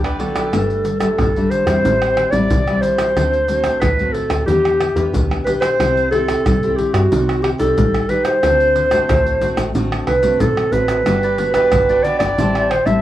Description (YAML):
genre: samba and choro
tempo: 91 BPM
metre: 4/4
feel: straight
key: G major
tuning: A4 = 439 Hz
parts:
  - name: cavaquinho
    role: accompaniment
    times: 0.0-0.5, 11.1-13.0 s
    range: F#4 to A5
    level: -26 LUFS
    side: right 2 dB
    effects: none
  - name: nylon-string guitar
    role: accompaniment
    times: 0.0-13.0 s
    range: G2 to D5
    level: -22 LUFS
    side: left 2 dB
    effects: none
  - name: woody FM bass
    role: bass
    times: 0.0-13.0 s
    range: G1 to G2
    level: -21 LUFS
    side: equal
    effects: none
  - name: egg shaker, pandeiro, tamborim and surdo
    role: percussion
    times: 0.0-13.0 s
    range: none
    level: -22 LUFS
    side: right 1 dB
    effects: none
  - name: breathy clarinet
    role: melody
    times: 0.2-13.0 s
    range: F#4 to E5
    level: -16 LUFS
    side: right 1 dB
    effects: plate reverb
room: moderate studio ambience, RT60 0.5 s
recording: worn, warbling old tape, cassette tape, warbly pitch drift, small room ambience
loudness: -14 LUFS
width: side -13 dB against mid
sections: 0.5-13.0 A section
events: none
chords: 0.0 Gmaj7; 0.5 Gsus2; 1.8 Am7; 3.2 D7; 4.5 Em7; 5.8 C; 7.1 Cmadd9; 8.4 D7; 11.1 Gmaj7; 12.4 Am7